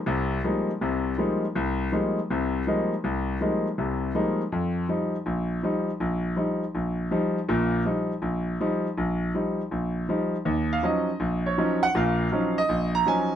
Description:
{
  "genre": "jazz",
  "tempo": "162 BPM",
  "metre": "4/4",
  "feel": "swing 66% on 8ths",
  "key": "unclear",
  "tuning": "A4 = 440 Hz",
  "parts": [
    { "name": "clear concert grand piano", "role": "solo", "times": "0.1-13.4 s", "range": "Bb1 to Bb5", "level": "-24 LUFS", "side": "equal", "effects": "none" }
  ],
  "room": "light reverb",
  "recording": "close, detailed microphones",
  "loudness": "-24 LUFS",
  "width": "side -10 dB against mid",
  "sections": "0.0-10.5 A section; 10.5-13.4 B section",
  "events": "none",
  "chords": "0.0 Fm11; 4.5 Ebadd9; 10.5 Ebm9",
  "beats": "| 0.06 0.43 0.81 1.18 | 1.55 1.92 2.29 2.66 | 3.03 3.40 3.77 4.15 | 4.52 4.89 5.26 5.63 | 6.00 6.37 6.75 7.12 | 7.49 7.86 8.23 8.60 | 8.97 9.35 9.72 10.09 | 10.46 10.83 11.20 11.57 | 11.94 12.31 12.69 13.06"
}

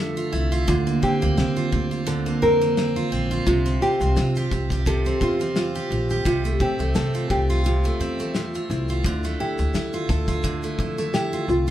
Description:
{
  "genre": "acoustic pop",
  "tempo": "86 BPM",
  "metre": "4/4",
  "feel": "swing 55% on 16ths",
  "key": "F major",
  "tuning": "A4 = 440 Hz",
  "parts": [
    { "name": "nylon-string guitar", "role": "melody", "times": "0.0-11.7 s", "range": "E4 to Bb4", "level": "-25 LUFS", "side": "left 1 dB", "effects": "none" },
    { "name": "picked steel-string acoustic guitar", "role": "accompaniment", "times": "0.0-11.7 s", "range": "C3 to G4", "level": "-24 LUFS", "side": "right 2 dB", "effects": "none" },
    { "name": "upright bass", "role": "bass", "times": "0.0-11.7 s", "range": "Bb1 to D3", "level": "-25 LUFS", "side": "equal", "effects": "none" },
    { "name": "loose indie drum kit", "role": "drums", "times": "0.2-11.7 s", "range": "kick drum, shaker, snare drum", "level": "-28 LUFS", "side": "left 1 dB", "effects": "none" }
  ],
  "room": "light reverb",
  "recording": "band playing live in one room",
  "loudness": "-20 LUFS",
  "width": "side -12 dB against mid",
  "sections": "0.0-11.7 A section",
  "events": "none",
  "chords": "0.0 Dmadd9; 0.7 Bbadd9/D; 3.5 Csus4; 6.3 F/C; 9.0 Dmadd9",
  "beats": "| 0.68 1.38 2.07 2.77 | 3.47 4.16 4.86 5.56 | 6.26 6.95 7.65 8.35 | 9.04 9.74 10.44 11.13"
}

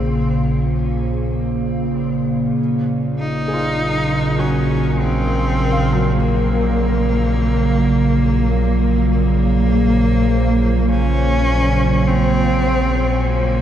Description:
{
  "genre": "ambient",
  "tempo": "free time",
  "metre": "none",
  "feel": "none",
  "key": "unclear",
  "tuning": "A4 = 440 Hz",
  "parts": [
    { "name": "clear cello", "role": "melody", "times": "0.0-13.6 s", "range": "Bb3 to Eb4", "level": "-22 LUFS", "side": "equal", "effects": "shimmer reverb, diffuse ambient delay" },
    { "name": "warbly tape-like pad", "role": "sustained chords", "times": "0.0-13.6 s", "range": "Bb2 to C5", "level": "-18 LUFS", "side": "right 1 dB", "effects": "chorus, built-in reverb, shimmer reverb" },
    { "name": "felt-muted upright piano", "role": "arpeggios", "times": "0.0-13.6 s", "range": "Gb3 to F5", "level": "-29 LUFS", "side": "equal", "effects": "shimmer reverb, diffuse ambient delay" },
    { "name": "warm sub bass", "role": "bass", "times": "0.0-13.6 s", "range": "Bb1", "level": "-20 LUFS", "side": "equal", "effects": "none" }
  ],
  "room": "wet huge ambient reverb, RT60 7.8 s",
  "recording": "dark, warm production",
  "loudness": "-15 LUFS",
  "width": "side -10 dB against mid",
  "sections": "0.0-13.6 A section",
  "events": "fade-in on felt piano 0.0-13.6",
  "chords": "0.0 Bbm7; 2.6 Gb/Bb",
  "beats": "free time"
}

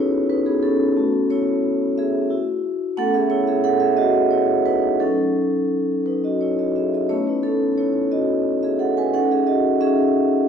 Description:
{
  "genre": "classical, contemporary piece for solo vibraphone",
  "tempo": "88 BPM",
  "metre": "3/4",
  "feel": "rubato",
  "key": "unclear",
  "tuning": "A4 = 441 Hz",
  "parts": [
    { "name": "vibraphone with medium mallets", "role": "solo", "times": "0.0-10.5 s", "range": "F#3 to G#5", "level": "-17 LUFS", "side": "equal", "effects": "none" }
  ],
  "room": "wet stone room reverb, RT60 1.4 s",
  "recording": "dark, warm production",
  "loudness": "-17 LUFS",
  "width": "side -7 dB against mid",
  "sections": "0.0-10.5 A section",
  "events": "none",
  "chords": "0.0 C#m11; 1.0 A69; 2.3 Esus2; 3.0 A69; 5.0 F#m6; 7.1 Amaj9; 9.1 C#madd9",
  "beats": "0.29 | 0.96 1.64 2.31 | 2.97 3.63 4.30 | 5.00 5.70 6.40 | 7.10 7.78 8.46 | 9.14 9.81"
}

